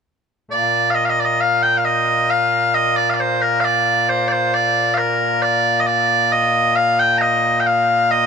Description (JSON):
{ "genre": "scottish traditional", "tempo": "67 BPM", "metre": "3/4", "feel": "straight", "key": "Bb major", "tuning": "A4 = 440 Hz", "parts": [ { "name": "loud bright bagpipes", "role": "solo", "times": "0.5-8.3 s", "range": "Bb2 to Bb5", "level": "-14 LUFS", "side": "equal", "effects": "none" } ], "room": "moderate huge ambient reverb, RT60 4.1 s", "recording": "dark, warm production", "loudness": "-14 LUFS", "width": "side -6 dB against mid", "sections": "0.5-8.3 A section", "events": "none", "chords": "none", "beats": "| 0.50 1.40 2.29 | 3.19 4.08 4.98 | 5.88 6.77 7.67" }